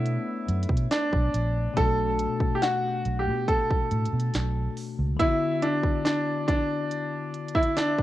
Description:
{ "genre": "contemporary R&B", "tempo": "70 BPM", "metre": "4/4", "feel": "straight", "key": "B minor", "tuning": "A4 = 440 Hz", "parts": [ { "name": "clear baby grand piano", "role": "melody", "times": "0.0-8.0 s", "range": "D4 to A4", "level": "-26 LUFS", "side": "right 1 dB", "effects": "cassette tape, analog delay" }, { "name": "bell-like tine electric piano", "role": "accompaniment", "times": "0.0-8.0 s", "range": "B2 to C#5", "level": "-32 LUFS", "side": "left 7 dB", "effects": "none" }, { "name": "chorused pulse-width pad", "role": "sustained chords", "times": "0.0-1.7 s", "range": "A3 to D4", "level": "-40 LUFS", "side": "left 1 dB", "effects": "sidechain pumping" }, { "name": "vintage muted fingered electric bass", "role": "bass", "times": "0.0-5.1 s", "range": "A#1 to B2", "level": "-27 LUFS", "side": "right 1 dB", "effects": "none" }, { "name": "trap drum kit", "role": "drums", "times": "0.1-8.0 s", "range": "hi-hat, kick drum, snare drum", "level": "-28 LUFS", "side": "right 1 dB", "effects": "none" } ], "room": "light reverb", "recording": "home recording on cassette", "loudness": "-23 LUFS", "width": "side -14 dB against mid", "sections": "0.0-8.0 A section", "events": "none", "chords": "0.0 Bm9; 5.2 D69" }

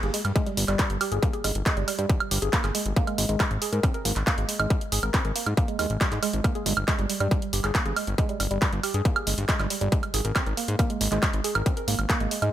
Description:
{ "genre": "psychedelic trance", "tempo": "138 BPM", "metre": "4/4", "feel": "straight", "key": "unclear", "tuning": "A4 = 441 Hz", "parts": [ { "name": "woody wave-folded pluck", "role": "riff", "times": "0.0-12.5 s", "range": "G3 to Bb4", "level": "-30 LUFS", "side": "moving between equal and right 7 dB", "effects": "chorus, auto-pan, sidechain pumping, digital delay" }, { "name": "fat analog bass", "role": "bass", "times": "0.0-12.5 s", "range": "G1 to Ab2", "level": "-27 LUFS", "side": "equal", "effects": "tube saturation" }, { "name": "techno drum kit", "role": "drums", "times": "0.0-12.5 s", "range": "handclaps, hi-hat, woodblock", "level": "-28 LUFS", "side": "right 2 dB", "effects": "overdrive, studio reverb" }, { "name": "electronic kick drum", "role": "drums", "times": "0.4-12.2 s", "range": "none", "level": "-25 LUFS", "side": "equal", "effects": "distortion, overdrive, studio reverb" } ], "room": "digital ambience", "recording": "none", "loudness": "-23 LUFS", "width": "side -12 dB against mid", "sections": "0.0-12.5 A section", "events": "none", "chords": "0.0 N.C.; 3.0 Ab5; 6.4 N.C.; 9.9 Ab5" }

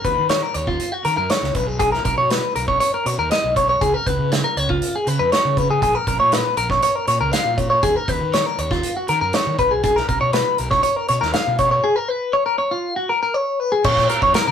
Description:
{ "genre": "math rock and midwest emo", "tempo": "120 BPM", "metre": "4/4", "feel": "straight", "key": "unclear", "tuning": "A4 = 442 Hz", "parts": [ { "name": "clean electric guitar", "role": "arpeggios", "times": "0.0-14.5 s", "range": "E#4 to E#5", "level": "-18 LUFS", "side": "left 1 dB", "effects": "phaser" }, { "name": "fuzz fingered electric bass", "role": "bass", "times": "0.0-14.5 s", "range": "A#1 to D#3", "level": "-25 LUFS", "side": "right 1 dB", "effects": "overdrive" }, { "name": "loose indie drum kit", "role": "drums", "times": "0.0-14.5 s", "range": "crash cymbal, hi-hat, kick drum, snare drum", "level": "-24 LUFS", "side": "right 2 dB", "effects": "none" } ], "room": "wet small room reverb, RT60 0.5 s", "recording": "rough rehearsal-room recording, warm saturation", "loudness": "-16 LUFS", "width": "side -8 dB against mid", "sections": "0.0-13.9 A section", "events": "break 11.8-13.9", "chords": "0.0 D#m9; 1.6 Bmaj9; 3.8 C#7; 5.8 A#m; 7.8 D#m9; 9.6 Bmaj7sus2; 11.8 C#7; 12.8 F#maj9; 13.9 A#m" }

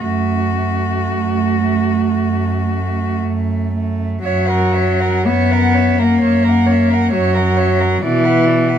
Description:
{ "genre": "classical, lyrical piece for cello ensemble", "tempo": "55-68 BPM", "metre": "4/4", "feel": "rubato", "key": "F# minor", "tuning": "A4 = 441 Hz", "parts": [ { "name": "warm cello", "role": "melody", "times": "0.0-8.8 s", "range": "F#4 to F#5", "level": "-23 LUFS", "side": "left 5 dB", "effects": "none" }, { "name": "dark cello", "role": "second line", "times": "0.0-8.8 s", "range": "A3 to C#5", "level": "-21 LUFS", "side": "right 10 dB", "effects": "none" }, { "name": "rich cello", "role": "accompaniment", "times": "0.0-8.8 s", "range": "E3 to B3", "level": "-17 LUFS", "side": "left 2 dB", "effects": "none" }, { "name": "dark cello", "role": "bass", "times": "0.0-8.8 s", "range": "F#2 to B2", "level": "-19 LUFS", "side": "right 1 dB", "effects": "none" } ], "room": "light reverb", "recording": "minimal, uncompressed stereo recording", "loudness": "-13 LUFS", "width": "side -9 dB against mid", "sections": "0.0-4.2 A section; 4.2-8.8 B section", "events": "none", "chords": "0.0 F#m; 4.2 F#7; 8.0 Bm" }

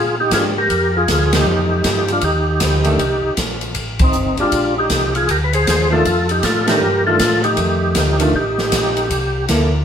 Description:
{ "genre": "soul jazz organ trio", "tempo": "157 BPM", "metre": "4/4", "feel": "swing 64% on 8ths", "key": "F mixolydian", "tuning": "A4 = 441 Hz", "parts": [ { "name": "overdriven tonewheel organ", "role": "melody", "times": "0.0-9.5 s", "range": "C4 to C5", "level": "-17 LUFS", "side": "equal", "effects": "slow rotary speaker, chorus vibrato" }, { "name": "mellow tonewheel organ", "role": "bass", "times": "0.0-9.8 s", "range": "G1 to Bb2", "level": "-20 LUFS", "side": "equal", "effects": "chorus vibrato, slow rotary speaker" }, { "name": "archtop guitar, miked and amplified", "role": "accompaniment", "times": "0.3-0.5, 2.8-9.7 s", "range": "Eb3 to A4", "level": "-21 LUFS", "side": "right 2 dB", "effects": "none" }, { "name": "swinging big-band drum kit", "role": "drums", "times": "0.3-9.6 s", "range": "hi-hat, kick drum, ride cymbal, snare drum", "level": "-20 LUFS", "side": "equal", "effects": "none" } ], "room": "wet studio reverb, RT60 0.8 s", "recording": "band playing live in one room", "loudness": "-14 LUFS", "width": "side -8 dB against mid", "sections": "0.0-9.8 A section", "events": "band accent 1.3, 3.9, 6.6", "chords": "0.0 Bb6; 1.5 F13; 4.5 Bb13; 6.0 F13; 9.1 C13" }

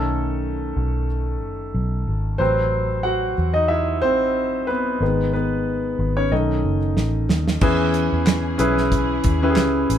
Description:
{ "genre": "piano-driven pop", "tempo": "92 BPM", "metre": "4/4", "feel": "swing 56% on 16ths", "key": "E major", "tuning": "A4 = 441 Hz", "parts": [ { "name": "clear concert grand piano", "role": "accompaniment", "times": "0.0-10.0 s", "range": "C3 to F#5", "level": "-21 LUFS", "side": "equal", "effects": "none" }, { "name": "vintage muted fingered electric bass", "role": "bass", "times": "0.0-10.0 s", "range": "F#1 to E2", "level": "-23 LUFS", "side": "equal", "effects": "none" }, { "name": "damped 70s drum kit", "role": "drums", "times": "7.0-10.0 s", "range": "crash cymbal, handclaps, hi-hat, kick drum, snare drum", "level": "-22 LUFS", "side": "right 2 dB", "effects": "none" }, { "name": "dark studio string section", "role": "sustained chords", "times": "7.6-10.0 s", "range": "C#4 to G#4", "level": "-32 LUFS", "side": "left 4 dB", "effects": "none" } ], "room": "moderate studio ambience, RT60 0.4 s", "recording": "band playing live in one room", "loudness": "-18 LUFS", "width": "side -9 dB against mid", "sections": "0.0-7.6 A section; 7.6-10.0 B section", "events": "grand piano solo 0.0-7.6; drum fill 7.0-7.6", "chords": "0.0 B7; 2.4 Am6; 5.0 G#m; 6.3 B7; 7.6 E6" }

